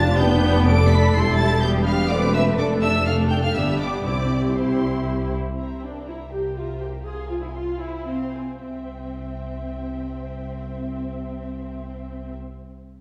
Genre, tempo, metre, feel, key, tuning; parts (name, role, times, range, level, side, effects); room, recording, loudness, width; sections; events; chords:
quick classical-period movement for string orchestra; 104-128 BPM; 3/4; rubato; C major; A4 = 440 Hz
rich chamber violin section; melody; 0.0-12.3 s; G5 to D7; -31 LUFS; equal
rich chamber violin section; second line; 0.0-12.3 s; F4 to D6; -35 LUFS; equal
rich studio viola section; accompaniment; 0.0-12.3 s; G3 to Ab4; -28 LUFS; equal
rich chamber cello section; bass; 0.0-12.3 s; C2 to B4; -33 LUFS; equal
rich studio double bass section; bass; 0.0-12.3 s; E1 to C2; -26 LUFS; equal
wet recital hall reverb, RT60 1.9 s; heard from further back in the room; -22 LUFS; mono
0.0-5.6 A section; 5.6-8.6 B section; 8.6-11.8 C section
slowing down 4.8-8.6
0.0 G7/F; 1.1 C/E; 2.6 Dm/F; 3.6 G; 4.1 C; 5.6 C7; 7.0 Fm/C; 8.6 C